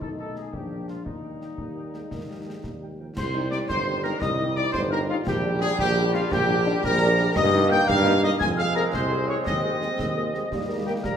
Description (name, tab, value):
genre	military-style march for wind band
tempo	114 BPM (dotted quarters)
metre	6/8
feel	straight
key	Ab major from 7.4 s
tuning	A4 = 440 Hz
part	warm trumpet section	melody	0.0-11.2 s	Eb4 to Ab5	-29 LUFS	left 2 dB	none
part	warm French horn section	accompaniment	0.0-10.9 s	D#3 to Bb4	-33 LUFS	left 4 dB	none
part	warm tuba	bass	0.0-11.2 s	G1 to G2	-26 LUFS	right 2 dB	none
part	concert bass drum, concert snare drum and clash cymbals	drums	0.0-11.2 s	none	-34 LUFS	left 1 dB	none
part	dark woodwind section	second line	0.2-11.2 s	F4 to Ab5	-31 LUFS	equal	none
part	dark euphonium	second line	1.6-3.1, 10.0-11.2 s	F3 to Bb3	-35 LUFS	right 4 dB	none
part	wooden piccolo	second line	3.2-11.2 s	F5 to Ab6	-30 LUFS	left 2 dB	none
part	mellow trombone section	sustained chords	3.2-11.2 s	D3 to C4	-30 LUFS	right 2 dB	none
room	wet recital hall reverb, RT60 1.4 s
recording	minimal, uncompressed stereo recording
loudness	-21 LUFS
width	side -8 dB against mid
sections	0.0-3.2 A section; 3.2-11.2 B section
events	none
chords	0.0 B7; 0.5 Bb; 1.1 Eb; 3.2 Cm; 5.3 Gm/Bb; 7.4 Eb/G; 8.4 Fm; 9.5 Ab/Eb; 10.5 Eb